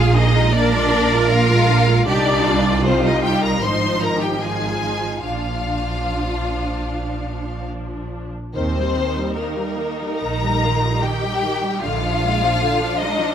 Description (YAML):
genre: classical, slow romantic movement for string orchestra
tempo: 74 BPM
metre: 4/4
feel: uneven beats, rubato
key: unclear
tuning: A4 = 441 Hz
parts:
  - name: warm symphonic violin section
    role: melody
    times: 0.0-13.3 s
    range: Bb4 to C6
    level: -23 LUFS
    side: left 4 dB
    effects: none
  - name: clear symphonic violin section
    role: second line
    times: 0.0-13.3 s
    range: Bb3 to C5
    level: -25 LUFS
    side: left 2 dB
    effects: none
  - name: warm symphonic viola section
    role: accompaniment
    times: 0.0-13.3 s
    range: D3 to F4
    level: -24 LUFS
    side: right 1 dB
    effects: none
  - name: rich symphonic cello section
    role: bass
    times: 0.0-13.3 s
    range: D4 to Bb4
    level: -25 LUFS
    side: right 3 dB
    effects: none
  - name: rich symphonic double bass section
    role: bass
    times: 0.0-12.5 s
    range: Ab1 to Eb2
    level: -22 LUFS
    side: right 3 dB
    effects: none
room: moderate concert hall reverb, RT60 2.5 s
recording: close, detailed microphones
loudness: -17 LUFS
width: side -9 dB against mid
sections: 0.0-13.3 A section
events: none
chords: 0.0 Bb7; 2.1 Cm; 3.6 Fm7/Ab; 5.2 Bb; 8.5 Eb; 11.8 Bb7